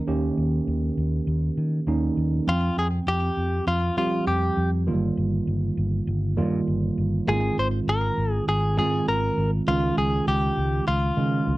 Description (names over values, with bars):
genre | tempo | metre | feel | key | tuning
1980s-style pop | 100 BPM | 4/4 | straight | unclear | A4 = 439 Hz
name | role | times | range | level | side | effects
mellow tine electric piano | accompaniment | 0.0-11.6 s | Eb3 to G5 | -26 LUFS | right 2 dB | tube saturation
fingered electric bass | bass | 0.1-11.6 s | G1 to F3 | -25 LUFS | equal | none
direct-recorded clean electric guitar | melody | 2.5-11.6 s | F4 to C5 | -26 LUFS | left 1 dB | slapback echo
room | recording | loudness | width
little or no reverb | dry, close 1970s-style studio recording | -22 LUFS | side -18 dB against mid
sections
0.0-2.5 A section; 2.5-11.6 B section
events
none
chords
0.0 Eb7; 2.5 Fsus2; 4.9 Ebadd9/G; 7.3 Ab6; 9.7 Dbadd9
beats
| 0.08 0.68 1.28 1.88 | 2.48 3.08 3.68 4.28 | 4.88 5.48 6.08 6.68 | 7.28 7.88 8.48 9.08 | 9.68 10.28 10.88 11.48